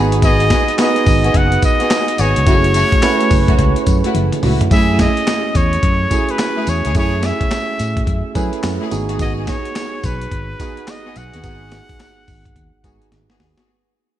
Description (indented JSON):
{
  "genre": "R&B, new jack swing",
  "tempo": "107 BPM",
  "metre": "4/4",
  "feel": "swing 63% on 16ths",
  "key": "F# dorian",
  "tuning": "A4 = 440 Hz",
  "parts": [
    { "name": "tine electric piano", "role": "accompaniment", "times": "0.0-13.7 s", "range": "A3 to B5", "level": "-21 LUFS", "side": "right 5 dB", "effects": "slapback echo" },
    { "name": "rich studio string section", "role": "stabs", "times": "0.0-13.7 s", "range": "A3 to G#4", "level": "-23 LUFS", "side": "left 2 dB", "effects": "none" },
    { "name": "fingered electric bass", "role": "bass", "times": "0.0-13.5 s", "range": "F#1 to F#3", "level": "-18 LUFS", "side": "left 1 dB", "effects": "none" },
    { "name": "breakbeat sampler-style drum kit", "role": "drums", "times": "0.1-13.7 s", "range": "handclaps, hi-hat, kick drum, snare drum, tambourine, toms", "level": "-18 LUFS", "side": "left 1 dB", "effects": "vintage 12-bit sampler grit" },
    { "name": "trumpet with straight mute", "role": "melody", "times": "0.2-13.1 s", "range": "B4 to F#5", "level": "-20 LUFS", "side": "equal", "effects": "none" }
  ],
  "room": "light reverb",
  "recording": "faint mains hum",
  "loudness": "-13 LUFS",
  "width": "side -12 dB against mid",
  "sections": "0.0-4.7 A section; 4.7-13.7 B section",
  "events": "tine electric piano fill 0.0; drum fill 4.1-4.7, 13.1-13.7; fade-out 4.7-13.7",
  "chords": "0.0 G#m7; 2.5 F#m7; 4.7 F#m9; 8.9 G#m7",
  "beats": "| 0.22 0.78 1.34 1.91 | 2.47 3.03 3.59 4.15 | 4.71 5.27 5.83 6.39 | 6.95 7.51 8.07 8.63 | 9.20 9.76 10.32 10.88 | 11.44 12.00 12.56 13.12"
}